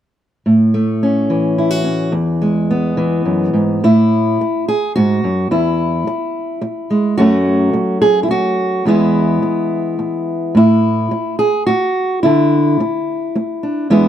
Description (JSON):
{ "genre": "folk, solo fingerstyle acoustic guitar", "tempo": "107 BPM", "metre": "3/4", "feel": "rubato", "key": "A major", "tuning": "A4 = 442 Hz", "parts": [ { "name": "fingerpicked steel-string acoustic guitar", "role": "solo", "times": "0.5-14.1 s", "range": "E2 to G#4", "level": "-13 LUFS", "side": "equal", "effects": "none" } ], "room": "small room ambience", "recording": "dry, close 1970s-style studio recording", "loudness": "-13 LUFS", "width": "side -10 dB against mid", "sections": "0.5-3.8 A section; 3.8-14.1 B section", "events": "none", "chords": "0.5 A; 2.1 E; 3.8 A5; 5.5 E; 7.2 F#m; 8.9 E; 10.6 A5; 12.2 D5" }